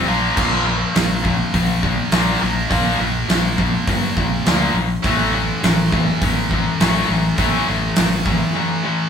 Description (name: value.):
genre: hard rock.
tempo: 103 BPM.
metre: 4/4.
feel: straight.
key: unclear.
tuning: A4 = 439 Hz.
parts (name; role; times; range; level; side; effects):
heavy high-gain guitar; riff; 0.0-9.1 s; A2 to Bb3; -23 LUFS; right 1 dB; distortion.
scooped high-gain guitar; riff; 0.0-9.1 s; A2 to Bb3; -21 LUFS; left 5 dB; distortion.
tight distorted guitar; riff; 0.0-9.1 s; A2 to Bb3; -28 LUFS; right 5 dB; distortion.
fingered electric bass; bass; 0.1-8.4 s; A1 to G2; -24 LUFS; equal; none.
huge arena drum kit; drums; 0.4-8.4 s; crash cymbal, hi-hat, kick drum, snare drum; -20 LUFS; right 1 dB; none.
room: moderate studio reverb, RT60 0.8 s.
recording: band playing live in one room.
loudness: -15 LUFS.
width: side -7 dB against mid.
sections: 0.0-9.1 A section.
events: break 8.5-9.1.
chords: 0.1 Bb5; 5.0 A5.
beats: | 0.38 0.96 1.54 2.13 | 2.71 3.29 3.88 4.46 | 5.04 5.63 6.21 6.79 | 7.37 7.96 8.54.